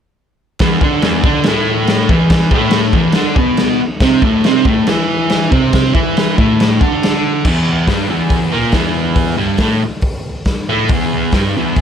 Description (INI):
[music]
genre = garage rock duo or trio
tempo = 140 BPM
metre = 4/4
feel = straight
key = E minor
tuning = A4 = 441 Hz
[part]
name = fuzz guitar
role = riff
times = 0.6-11.8 s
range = E2 to E4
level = -13 LUFS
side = equal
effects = distortion
[part]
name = raw garage drum kit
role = drums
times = 0.6-11.8 s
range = crash cymbal, hi-hat, kick drum, snare drum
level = -16 LUFS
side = equal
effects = none
[sound]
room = small room ambience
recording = none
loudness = -11 LUFS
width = side -8 dB against mid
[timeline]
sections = 0.6-7.4 A section; 7.4-11.8 B section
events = none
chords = 0.6 E5; 4.0 Amadd11; 7.4 Em